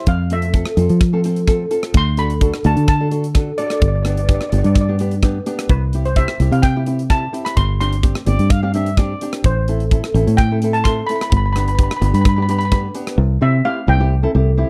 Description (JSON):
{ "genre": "calypso", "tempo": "128 BPM", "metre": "4/4", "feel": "straight", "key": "C major", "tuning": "A4 = 441 Hz", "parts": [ { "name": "steel pan", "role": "melody", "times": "0.0-14.7 s", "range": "B4 to C6", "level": "-25 LUFS", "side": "equal", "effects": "none" }, { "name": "nylon-string guitar", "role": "accompaniment", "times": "0.0-14.7 s", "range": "B3 to A4", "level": "-26 LUFS", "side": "equal", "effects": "none" }, { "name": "fingered electric bass", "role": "bass", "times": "0.1-14.6 s", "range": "G1 to F3", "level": "-19 LUFS", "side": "equal", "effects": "none" }, { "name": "tight metal drum kit", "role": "drums", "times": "0.1-13.2 s", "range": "hi-hat, kick drum, rim click", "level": "-19 LUFS", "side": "equal", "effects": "none" }, { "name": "mellow trumpet", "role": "second line", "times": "8.3-9.3 s", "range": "D5 to F5", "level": "-28 LUFS", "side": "equal", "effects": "none" } ], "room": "little or no reverb", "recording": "dry, close 1970s-style studio recording", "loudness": "-17 LUFS", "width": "mono", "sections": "0.0-13.2 A section; 13.2-14.7 B section", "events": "none", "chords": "0.1 Fmaj7; 1.9 D; 3.8 G; 5.7 C; 7.6 Gsus4; 9.4 Am; 11.3 G; 13.2 C" }